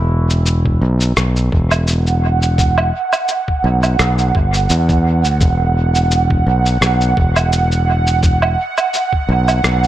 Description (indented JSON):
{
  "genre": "ambient dub",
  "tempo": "85 BPM",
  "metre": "4/4",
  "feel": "swing 54% on 16ths",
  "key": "E minor",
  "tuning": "A4 = 440 Hz",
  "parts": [
    { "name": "overdriven fingered electric bass", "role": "bass", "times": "0.0-9.9 s", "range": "E1 to E2", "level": "-14 LUFS", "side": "equal", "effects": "none" },
    { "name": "electronic cabasa, rim click and woodblock", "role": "drums", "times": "0.3-9.9 s", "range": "none", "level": "-20 LUFS", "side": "equal", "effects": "studio reverb, dub echo" },
    { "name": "electronic kick drum", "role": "drums", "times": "0.7-9.3 s", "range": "none", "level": "-17 LUFS", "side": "equal", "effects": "studio reverb" },
    { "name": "airy breathy pad", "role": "sustained chords", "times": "2.0-9.9 s", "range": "F#5", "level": "-18 LUFS", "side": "right 5 dB", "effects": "chorus" }
  ],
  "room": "light reverb, digital ambience",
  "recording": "none",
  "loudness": "-12 LUFS",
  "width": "side -13 dB against mid",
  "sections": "0.0-9.9 A section",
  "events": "none",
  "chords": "0.0 Esus2",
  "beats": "0.46 1.17 1.88 | 2.58 3.29 3.99 4.70 | 5.40 6.11 6.82 7.52 | 8.23 8.93 9.64"
}